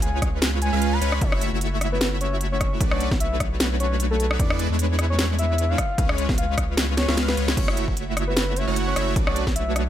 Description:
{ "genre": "future bass", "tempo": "151 BPM", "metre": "4/4", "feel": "swing 55% on 16ths, half-time", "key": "F# minor", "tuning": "A4 = 440 Hz", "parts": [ { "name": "soft octave-layered synth lead", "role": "melody", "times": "0.0-9.7 s", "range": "A4 to B5", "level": "-29 LUFS", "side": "left 1 dB", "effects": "chorus, sidechain pumping, dub echo" }, { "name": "big bright polysynth", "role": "riff", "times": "0.0-9.9 s", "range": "G#3 to F#5", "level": "-27 LUFS", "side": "right 1 dB", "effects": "chorus, sidechain pumping" }, { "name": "saturated sub bass", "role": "bass", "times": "0.0-9.9 s", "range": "F#1 to E2", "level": "-25 LUFS", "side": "equal", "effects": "sidechain pumping" }, { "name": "trap drum kit", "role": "drums", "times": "0.0-9.8 s", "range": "crash cymbal, hi-hat, rim click, snare drum", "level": "-26 LUFS", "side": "equal", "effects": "studio reverb" }, { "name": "electronic kick drum", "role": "drums", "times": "0.2-9.5 s", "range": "none", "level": "-24 LUFS", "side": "equal", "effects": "studio reverb" } ], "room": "little or no reverb", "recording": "none", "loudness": "-20 LUFS", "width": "side -11 dB against mid", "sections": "0.0-7.6 A section; 7.6-9.9 A section", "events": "drop 0.0-7.6, 7.6-9.9; drum fill 7.0-7.6; kick drops out 7.2-7.6", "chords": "0.0 C#7; 1.2 F#m7; 2.8 Bm7; 4.4 E7; 5.8 C#7; 7.6 F#m7; 9.2 Bm7" }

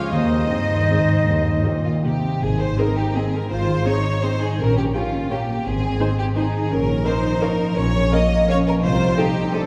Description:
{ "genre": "classical, orchestral ballroom waltz", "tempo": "145-184 BPM", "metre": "3/4", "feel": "rubato", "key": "Ab major", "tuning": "A4 = 440 Hz", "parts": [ { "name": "rich studio violin section", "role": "melody", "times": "0.0-9.6 s", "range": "Eb5 to Ab5", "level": "-38 LUFS", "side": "equal", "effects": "none" }, { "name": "clear studio violin section", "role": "second line", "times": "0.0-9.7 s", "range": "F4 to Eb5", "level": "-27 LUFS", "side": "equal", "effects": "none" }, { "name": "concert flute", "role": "second line", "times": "0.0-2.0 s", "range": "Eb5 to F5", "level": "-27 LUFS", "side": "equal", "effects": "none" }, { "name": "mellow cor anglais", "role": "second line", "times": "0.0-2.0 s", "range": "Eb4 to F4", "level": "-35 LUFS", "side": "equal", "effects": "none" }, { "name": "dark French horn section", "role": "sustained chords", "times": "0.0-2.0 s", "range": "Eb3 to F3", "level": "-28 LUFS", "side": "equal", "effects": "none" }, { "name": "concert harp", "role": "arpeggios", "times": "0.0-9.7 s", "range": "Ab2 to A5", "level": "-26 LUFS", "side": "equal", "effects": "none" }, { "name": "rich studio double bass section", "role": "bass", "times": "0.1-9.1 s", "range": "Ab1 to Eb2", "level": "-28 LUFS", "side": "equal", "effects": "none" }, { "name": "warm studio cello section", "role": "bass", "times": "0.1-9.7 s", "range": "Eb2 to F4", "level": "-28 LUFS", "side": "equal", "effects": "none" }, { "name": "warm tuba", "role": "bass", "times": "0.1-1.6 s", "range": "none", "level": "barely audible", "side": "none", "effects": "none" }, { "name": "dark studio viola section", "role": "accompaniment", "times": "0.5-9.6 s", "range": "Bb3 to C5", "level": "-32 LUFS", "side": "equal", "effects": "none" } ], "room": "wet concert hall reverb, RT60 2.3 s", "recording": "heard from further back in the room", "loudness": "-20 LUFS", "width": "mono", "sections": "0.0-2.4 A section; 2.4-9.7 A section", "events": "none", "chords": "0.1 Ab/Eb; 1.3 Eb; 2.4 Ab; 4.6 Gdim/Bb; 5.6 Ab; 6.7 Bbm; 8.8 Adim/C" }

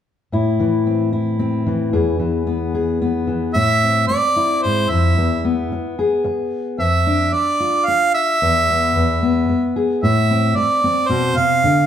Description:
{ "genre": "acoustic folk duo or small band", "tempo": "111 BPM", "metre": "3/4", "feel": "straight", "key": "A harmonic minor", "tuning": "A4 = 440 Hz", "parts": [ { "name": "fingerpicked steel-string acoustic guitar", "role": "accompaniment", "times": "0.3-11.9 s", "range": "E2 to G#4", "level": "-18 LUFS", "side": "left 2 dB", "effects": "none" }, { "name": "warm harmonica", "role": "melody", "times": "3.5-11.9 s", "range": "C5 to F5", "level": "-17 LUFS", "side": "right 2 dB", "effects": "plate reverb" } ], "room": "wet studio reverb, RT60 0.9 s", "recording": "heard from further back in the room", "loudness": "-15 LUFS", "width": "side -9 dB against mid", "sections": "0.3-3.6 A section; 3.6-11.9 B section", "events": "none", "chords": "0.3 Am; 1.9 E; 3.6 Am; 5.2 E; 6.8 Dm/F; 8.4 E5; 8.9 E; 10.0 Am" }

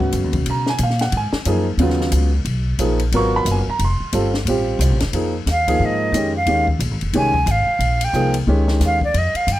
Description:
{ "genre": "modal jazz", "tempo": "180 BPM", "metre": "4/4", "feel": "swing 61% on 8ths", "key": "Bb dorian from 5.1 s", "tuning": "A4 = 444 Hz", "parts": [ { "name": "warm upright piano", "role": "accompaniment", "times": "0.0-9.0 s", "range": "Db3 to Db6", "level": "-21 LUFS", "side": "right 1 dB", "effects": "none" }, { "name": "upright bass", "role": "bass", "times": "0.0-9.6 s", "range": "F1 to Cb3", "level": "-20 LUFS", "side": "equal", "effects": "none" }, { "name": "compact cocktail drum kit", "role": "drums", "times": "0.0-9.6 s", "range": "hi-hat, kick drum, ride cymbal, snare drum", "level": "-26 LUFS", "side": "left 2 dB", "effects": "none" }, { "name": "breathy silver concert flute", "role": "melody", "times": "5.5-9.6 s", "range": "D5 to Ab5", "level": "-19 LUFS", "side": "right 1 dB", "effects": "none" } ], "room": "light reverb", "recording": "close, detailed microphones", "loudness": "-16 LUFS", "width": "side -14 dB against mid", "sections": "0.0-5.1 A section; 5.1-9.6 A section", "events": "flute solo 5.1-9.6", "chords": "0.0 Abm11; 3.8 Fadd9; 5.1 Bb9sus4" }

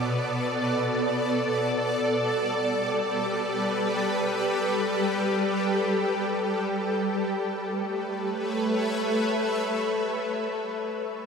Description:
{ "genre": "ambient", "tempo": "free time", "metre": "none", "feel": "none", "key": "A mixolydian", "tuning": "A4 = 440 Hz", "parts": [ { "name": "shimmering ambient pad", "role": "sustained chords", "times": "0.0-10.8 s", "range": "B2 to E5", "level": "-24 LUFS", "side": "equal", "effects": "chorus, built-in reverb" } ], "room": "wet huge ambient reverb, RT60 7.3 s", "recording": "none", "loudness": "-24 LUFS", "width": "side -6 dB against mid", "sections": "0.0-7.2 A section; 7.2-10.0 B section", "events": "none", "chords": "0.0 Bm7; 1.7 Gadd9; 7.2 Aadd9" }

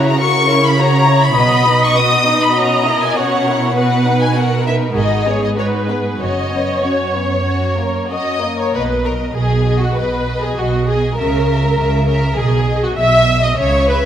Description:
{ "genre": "quick classical-period movement for string orchestra", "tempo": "100 BPM", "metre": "4/4", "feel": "rubato", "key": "B major", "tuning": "A4 = 439 Hz", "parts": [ { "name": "rich studio violin section", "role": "melody", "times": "0.0-14.1 s", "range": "B4 to D#6", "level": "-19 LUFS", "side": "left 4 dB", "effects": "none" }, { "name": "rich studio violin section", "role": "second line", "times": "0.0-14.1 s", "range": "A#3 to E5", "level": "-19 LUFS", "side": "left 2 dB", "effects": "none" }, { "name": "warm studio viola section", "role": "accompaniment", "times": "0.0-14.0 s", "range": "F#4 to E5", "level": "-19 LUFS", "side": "right 1 dB", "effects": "none" }, { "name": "warm studio cello section", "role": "bass", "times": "0.0-14.1 s", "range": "F#2 to C#3", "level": "-18 LUFS", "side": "right 3 dB", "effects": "none" }, { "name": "warm studio double bass section", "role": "bass", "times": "1.4-14.1 s", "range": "F#1 to C#2", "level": "-21 LUFS", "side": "right 2 dB", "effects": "none" } ], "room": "wet scoring stage reverb, RT60 1.8 s", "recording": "none", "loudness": "-13 LUFS", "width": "side -9 dB against mid", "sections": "0.0-8.7 A section; 8.7-14.1 B section", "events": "none", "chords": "0.0 F#7/C#; 1.4 B; 2.6 F#7/B; 3.8 B; 5.0 G#m7; 6.2 F#sus4; 7.5 F#; 8.7 B; 11.2 A#dim/C#; 12.4 B" }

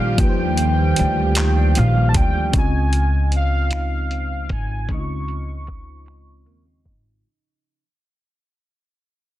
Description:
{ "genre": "slow six-eight R&B", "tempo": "51 BPM (dotted quarters)", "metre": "6/8", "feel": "straight", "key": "Db major", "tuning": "A4 = 440 Hz", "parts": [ { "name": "warm velvety synth lead", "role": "melody", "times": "0.0-6.9 s", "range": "F5 to Db6", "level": "-26 LUFS", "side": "equal", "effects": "chorus" }, { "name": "semi-hollow electric guitar", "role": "second line", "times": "0.0-7.8 s", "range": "Db3 to F4", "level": "-27 LUFS", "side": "right 5 dB", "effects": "none" }, { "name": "mellow FM electric piano", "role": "accompaniment", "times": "0.0-7.3 s", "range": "Db3 to Eb5", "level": "-27 LUFS", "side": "left 3 dB", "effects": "chorus" }, { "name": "warm studio string section", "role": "sustained chords", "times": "0.0-2.5 s", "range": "F3 to G4", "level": "-34 LUFS", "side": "right 1 dB", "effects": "none" }, { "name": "upright bass", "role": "bass", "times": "0.0-7.2 s", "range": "Ab1 to Eb2", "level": "-19 LUFS", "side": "equal", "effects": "none" }, { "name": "dusty soul sampler-style drum kit", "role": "drums", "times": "0.2-7.0 s", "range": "finger snaps, handclaps, hi-hat, kick drum", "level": "-21 LUFS", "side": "equal", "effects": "soft clipping on snare" } ], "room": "little or no reverb", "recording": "dense, heavily limited modern master, low-pass filter", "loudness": "-17 LUFS", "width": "side -14 dB against mid", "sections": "0.0-2.5 A section; 2.5-7.2 B section", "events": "fade-out 2.5-7.2; filter sweep 2.5-7.2", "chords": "0.0 Ebmaj9; 2.5 Dbmaj9" }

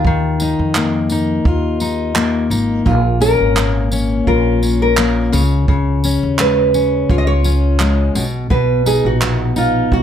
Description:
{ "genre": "acoustic pop", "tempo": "85 BPM", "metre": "4/4", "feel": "swing 55% on 16ths", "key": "Db mixolydian", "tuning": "A4 = 442 Hz", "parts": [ { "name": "nylon-string guitar", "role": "melody", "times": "0.0-10.0 s", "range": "F4 to Eb5", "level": "-18 LUFS", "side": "right 2 dB", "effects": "none" }, { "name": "fingerpicked steel-string acoustic guitar", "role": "accompaniment", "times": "0.0-10.0 s", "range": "Bb2 to F4", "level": "-17 LUFS", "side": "left 3 dB", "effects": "none" }, { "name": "upright bass", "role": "bass", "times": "0.0-10.0 s", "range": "Ab1 to F2", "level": "-18 LUFS", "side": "equal", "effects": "none" }, { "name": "jazz brush drum kit", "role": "drums", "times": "0.0-10.0 s", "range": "handclaps, kick drum, tambourine", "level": "-20 LUFS", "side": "right 2 dB", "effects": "none" } ], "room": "light reverb", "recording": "none", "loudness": "-13 LUFS", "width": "side -9 dB against mid", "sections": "0.0-10.0 A section", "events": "none", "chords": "0.0 Ebsus2; 2.9 Bbm; 5.3 Db; 8.2 Cb" }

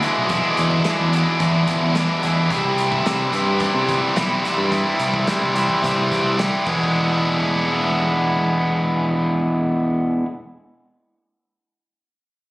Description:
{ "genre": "indie rock", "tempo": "108 BPM", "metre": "4/4", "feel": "straight", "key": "E mixolydian", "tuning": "A4 = 441 Hz", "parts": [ { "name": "biting overdriven guitar", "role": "riff", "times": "0.0-10.3 s", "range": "E2 to E4", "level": "-18 LUFS", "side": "equal", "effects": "none" }, { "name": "loose indie drum kit", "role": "drums", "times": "0.0-6.8 s", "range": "crash cymbal, hi-hat, kick drum, snare drum", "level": "-28 LUFS", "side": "equal", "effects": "none" }, { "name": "picked electric bass", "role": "bass", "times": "0.2-10.2 s", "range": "E1 to C3", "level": "-23 LUFS", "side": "equal", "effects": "none" } ], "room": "light reverb, small room ambience", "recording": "recorded on a phone in the room, studio reverb", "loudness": "-17 LUFS", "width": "side -21 dB against mid", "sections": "0.0-7.0 A section; 7.0-9.2 B section", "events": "none", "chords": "0.0 E7; 2.5 C; 6.7 E7" }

